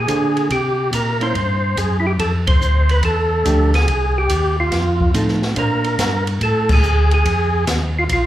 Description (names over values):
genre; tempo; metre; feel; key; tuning
soul jazz organ trio; 142 BPM; 4/4; swing 67% on 8ths; F major; A4 = 439 Hz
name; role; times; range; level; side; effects
percussive tonewheel organ; melody; 0.0-8.3 s; E4 to C5; -19 LUFS; equal; overdrive, chorus vibrato, stopped rotary speaker, slapback echo
mellow tonewheel organ; bass; 0.0-8.3 s; Bb1 to D3; -18 LUFS; equal; chorus vibrato, slow rotary speaker
archtop guitar, miked and amplified; accompaniment; 0.1-6.2 s; F3 to C5; -22 LUFS; right 2 dB; slapback echo
open jazz drum kit; drums; 0.1-8.2 s; crash cymbal, hi-hat, kick drum, ride cymbal, snare drum; -23 LUFS; equal; none
room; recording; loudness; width
light reverb, studio ambience; live gig heard through the venue's PA, club reverb; -15 LUFS; side -13 dB against mid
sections
0.0-5.6 A section; 5.6-8.3 B section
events
band accent 2.4, 6.6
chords
0.0 Bbmaj9; 0.5 C7(no3); 2.2 F69; 3.9 Cm; 4.7 F7; 5.6 Bbmaj9; 7.2 Fm7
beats
0.08 | 0.51 0.93 1.35 1.77 | 2.19 2.61 3.04 3.46 | 3.88 4.30 4.72 5.14 | 5.56 5.99 6.41 6.83 | 7.25 7.67 8.09